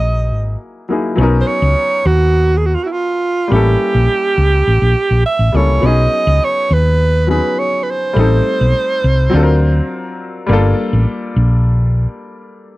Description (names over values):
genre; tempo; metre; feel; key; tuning
lush 1970s-style soul; 103 BPM; 4/4; straight; unclear; A4 = 443 Hz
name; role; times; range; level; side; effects
clear alto saxophone; melody; 0.0-10.2 s; E4 to E5; -16 LUFS; right 2 dB; none
clear baby grand piano; accompaniment; 0.0-12.8 s; F#3 to A#4; -20 LUFS; left 2 dB; none
hollow-body short-scale fingered electric bass; bass; 0.0-12.1 s; G1 to D#2; -12 LUFS; equal; none
room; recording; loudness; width
little or no reverb; dry, close 1970s-style studio recording; -12 LUFS; side -18 dB against mid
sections
0.0-5.8 A section; 5.8-12.8 B section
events
none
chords
0.0 F#13; 1.2 Bmaj9; 3.5 A7b9; 5.8 B69; 8.2 Am7b5; 9.3 D7alt; 10.5 Gm9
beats
0.03 0.61 | 1.19 1.77 2.35 2.93 | 3.51 4.09 4.67 5.26 | 5.84 6.42 7.00 7.58 | 8.16 8.75 9.33 9.91 | 10.49 11.07 11.65 12.24